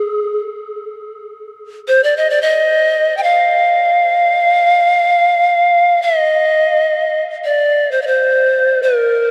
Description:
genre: world meditative, free-time meditation music.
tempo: free time.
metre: none.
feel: none.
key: Ab lydian.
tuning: A4 = 440 Hz.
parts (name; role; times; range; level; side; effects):
breathy reedy pan flute; solo; 0.0-9.3 s; Ab4 to G5; -14 LUFS; equal; diffuse ambient delay.
room: wet huge ambient reverb, RT60 9.5 s.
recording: cassette tape.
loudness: -13 LUFS.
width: mono.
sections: 0.0-9.3 A section.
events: none.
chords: none.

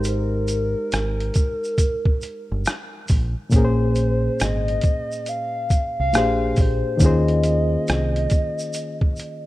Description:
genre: lo-fi hip hop.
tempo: 69 BPM.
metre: 4/4.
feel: swing 64% on 16ths.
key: unclear.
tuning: A4 = 435 Hz.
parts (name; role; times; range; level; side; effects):
hollow clarinet-like synth lead; melody; 0.0-9.5 s; Bb4 to F5; -26 LUFS; equal; chorus, phaser.
barky reed electric piano; accompaniment; 0.0-9.5 s; Bb2 to C5; -24 LUFS; left 1 dB; overdrive, cassette tape.
deep dub fingered electric bass; bass; 0.0-8.3 s; G1 to Eb2; -22 LUFS; equal; none.
tube shaker; percussion; 0.0-9.4 s; none; -36 LUFS; right 2 dB; none.
boom bap sampler-style drum kit; drums; 0.1-9.4 s; hi-hat, kick drum, rim click; -20 LUFS; equal; none.
room: little or no reverb.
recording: rough home demo mix, cassette tape.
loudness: -19 LUFS.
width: side -16 dB against mid.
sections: 0.0-9.5 A section.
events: none.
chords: 0.0 Abmaj9; 3.5 Bbm9; 6.1 Bb13; 7.0 Eb13sus4.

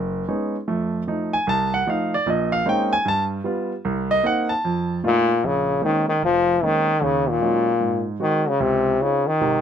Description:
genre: jazz.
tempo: 151 BPM.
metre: 4/4.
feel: swing 64% on 8ths.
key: Bb minor.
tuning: A4 = 440 Hz.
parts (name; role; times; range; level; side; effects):
warm baby grand piano; accompaniment; 0.0-9.6 s; F1 to A5; -22 LUFS; right 2 dB; none.
bright trombone; melody; 5.1-9.6 s; Bb2 to F3; -18 LUFS; left 2 dB; none.
room: light reverb.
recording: close, detailed microphones.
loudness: -19 LUFS.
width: side -8 dB against mid.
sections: 0.0-5.4 A section; 5.4-9.6 B section.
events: none.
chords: 0.0 B69; 0.7 F7; 2.3 Bbm11; 3.1 G7; 3.8 Cm7b5; 4.6 F7; 5.4 Bbm11; 7.0 Ebm11; 7.8 Ab7; 8.6 Dbmaj9.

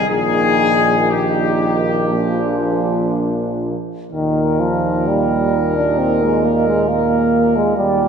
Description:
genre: classical, hymn-like piece for brass band.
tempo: 58-68 BPM.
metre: 4/4.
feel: rubato.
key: Eb major.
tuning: A4 = 440 Hz.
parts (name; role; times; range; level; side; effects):
clear trumpet section; melody; 0.0-8.1 s; G4 to D5; -20 LUFS; left 5 dB; none.
warm French horn section; second line; 0.0-8.1 s; D4 to F4; -24 LUFS; right 4 dB; none.
clear euphonium; accompaniment; 0.0-8.1 s; Eb3 to D4; -19 LUFS; equal; none.
warm tuba; bass; 0.0-8.1 s; Bb1 to Eb2; -21 LUFS; right 2 dB; none.
clear trombone; accompaniment; 0.1-8.1 s; Bb2; -24 LUFS; right 2 dB; none.
room: wet church reverb, RT60 2.8 s.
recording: minimal, uncompressed stereo recording.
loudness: -14 LUFS.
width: side -6 dB against mid.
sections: 0.0-4.1 A section; 4.1-8.1 B section.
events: none.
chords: 0.1 Eb/Bb; 2.1 Bb; 4.1 Eb5.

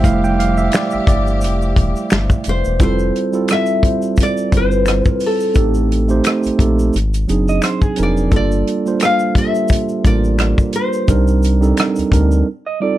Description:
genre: R&B, neo-soul.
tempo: 87 BPM.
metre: 4/4.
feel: swing 55% on 16ths.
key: F major.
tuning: A4 = 440 Hz.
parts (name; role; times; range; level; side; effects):
mellow tine electric piano; accompaniment; 0.0-13.0 s; Gb3 to G5; -18 LUFS; right 4 dB; none.
warm symphonic string section; sustained chords; 0.0-2.8 s; F3 to G4; -27 LUFS; left 4 dB; none.
round analog bass; bass; 0.0-12.4 s; E1 to D2; -17 LUFS; left 1 dB; none.
warm soul drum kit; drums; 0.0-12.3 s; finger snaps, hi-hat, kick drum, rim click, snare drum; -16 LUFS; equal; none.
tube shaker and finger snaps; percussion; 0.0-12.4 s; none; -32 LUFS; left 3 dB; none.
nylon-string guitar; melody; 2.5-11.7 s; A4 to F5; -20 LUFS; left 4 dB; slapback echo.
electric guitar through a small old amp; second line; 7.5-8.3, 12.7-13.0 s; Ab4 to Eb5; -21 LUFS; right 5 dB; none.
room: little or no reverb.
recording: dark, warm production.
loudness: -13 LUFS.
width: side -14 dB against mid.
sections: 0.0-2.8 A section; 2.8-13.0 B section.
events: tine electric piano solo 0.0-2.8; break 12.5-13.0.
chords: 0.0 Fmaj9; 5.6 Am7b5; 6.9 Ab7#11; 8.3 Gm9; 11.1 Cm9; 12.5 F9.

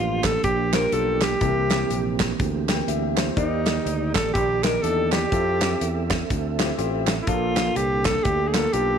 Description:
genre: uptempo gospel.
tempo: 123 BPM.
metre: 4/4.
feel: swing 60% on 8ths.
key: F major.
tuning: A4 = 445 Hz.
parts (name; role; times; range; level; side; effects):
breathy alto saxophone; melody; 0.0-9.0 s; Eb4 to Bb4; -24 LUFS; equal; none.
warm concert grand piano; accompaniment; 0.0-9.0 s; G2 to G5; -29 LUFS; left 12 dB; none.
mellow tonewheel organ; sustained chords; 0.0-9.0 s; Eb3 to E5; -29 LUFS; right 13 dB; slow rotary speaker, chorus vibrato.
fingered electric bass; bass; 0.0-9.0 s; A1 to F2; -28 LUFS; equal; none.
natural country drum kit; drums; 0.2-8.9 s; hi-hat, kick drum, snare drum; -26 LUFS; left 1 dB; none.
group handclap; percussion; 0.2-8.6 s; none; -32 LUFS; right 14 dB; none.
room: light reverb, studio ambience.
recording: 1960s-style stereo with parts hard left and right.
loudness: -20 LUFS.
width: side -7 dB against mid.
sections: 0.0-9.0 A section.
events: grand piano fill 2.6-3.4.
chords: 0.0 Gm7; 1.4 C7; 3.4 Ebmaj7; 5.3 Fmaj7; 7.3 Bbmaj7.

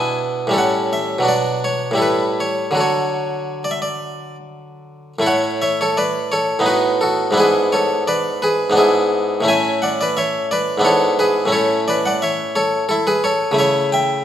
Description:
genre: classical, baroque-style suite movement for harpsichord.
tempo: 72-89 BPM.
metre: 3/4.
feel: rubato.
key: D major, A major from 5.2 s.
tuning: A4 = 442 Hz.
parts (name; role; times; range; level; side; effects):
harpsichord; solo; 0.0-14.2 s; G#2 to G#5; -16 LUFS; equal; none.
room: moderate recital hall reverb, RT60 1.6 s.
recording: minimal, uncompressed stereo recording.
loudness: -15 LUFS.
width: side -10 dB against mid.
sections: 0.0-5.2 A section; 5.2-14.2 A section.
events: none.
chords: 0.0 E7/B; 0.6 A7; 2.8 D; 5.2 A; 6.6 B7/A; 7.3 E7/G#; 9.4 A; 10.8 E7/G#; 11.5 A; 13.5 A/C#.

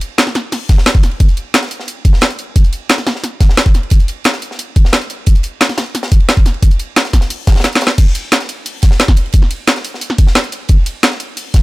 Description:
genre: drum and bass.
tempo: 177 BPM.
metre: 4/4.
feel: straight.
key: none.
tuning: none.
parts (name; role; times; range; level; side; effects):
drum and bass drum kit; drums; 0.0-11.6 s; crash cymbal, hi-hat, ride cymbal, snare drum; -14 LUFS; equal; overdrive.
tight metal drum kit; drums; 0.0-11.6 s; hi-hat, ride cymbal, snare drum; -25 LUFS; equal; high-pass filter on cymbals, high-pass filter on hats, high-pass filter on snare, high-pass filter on room.
electronic kick drum; drums; 0.7-11.6 s; none; -9 LUFS; equal; none.
room: small room ambience.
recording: none.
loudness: -10 LUFS.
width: side -20 dB against mid.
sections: 0.0-8.0 A section; 8.0-11.6 A section.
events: drop 0.0-8.0, 8.0-11.6; drum fill 7.6-8.0.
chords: none.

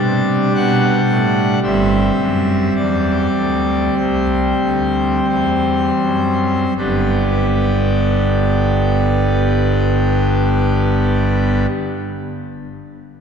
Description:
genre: classical, chorale-style piece for pipe organ.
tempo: 40-59 BPM.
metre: 4/4.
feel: rubato.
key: G major.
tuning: A4 = 440 Hz.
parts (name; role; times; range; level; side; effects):
pipe organ, full organ; solo; 0.0-11.7 s; G1 to F#5; -14 LUFS; equal; none.
room: wet church reverb, RT60 3.6 s.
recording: dark, warm production.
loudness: -14 LUFS.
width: side -6 dB against mid.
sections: 0.0-6.8 A section; 6.8-12.8 B section.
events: slowing down 0.0-6.8.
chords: 0.0 G; 1.6 C/G; 6.8 G.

